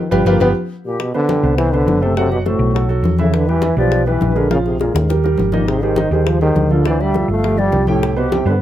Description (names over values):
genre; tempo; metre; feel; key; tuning
Afro-Cuban jazz; 205 BPM; 4/4; straight; unclear; A4 = 440 Hz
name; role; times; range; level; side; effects
warm trombone; melody; 0.0-8.5 s; A2 to B3; -19 LUFS; equal; plate reverb
warm concert grand piano; accompaniment; 0.1-8.6 s; D3 to G5; -20 LUFS; right 4 dB; none
hollow-body short-scale fingered electric bass; bass; 0.1-8.6 s; F#1 to G2; -18 LUFS; equal; none
congas; percussion; 0.1-8.6 s; none; -23 LUFS; left 2 dB; none
cowbell and bongos; percussion; 0.1-8.5 s; none; -24 LUFS; left 9 dB; none
mellow hollow silver concert flute; second line; 0.8-8.5 s; E4 to F5; -24 LUFS; left 4 dB; none
room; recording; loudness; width
light reverb; none; -13 LUFS; side -12 dB against mid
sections
1.0-8.6 A section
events
band accent 0.0-1.0; drum fill 0.1-1.0, 4.8-5.7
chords
0.0 G7#9; 1.0 C5; 2.2 F#dim; 2.7 B5; 3.3 Em7; 4.5 Bb5; 5.1 Eb; 5.7 Abmaj7; 6.8 Dmadd9; 7.4 G5; 8.0 C5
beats
0.11 0.41 0.70 | 0.99 1.28 1.58 1.87 | 2.16 2.46 2.75 3.04 | 3.33 3.63 3.92 4.21 | 4.51 4.80 5.09 5.38 | 5.68 5.97 6.26 6.55 | 6.85 7.14 7.43 7.72 | 8.02 8.31 8.60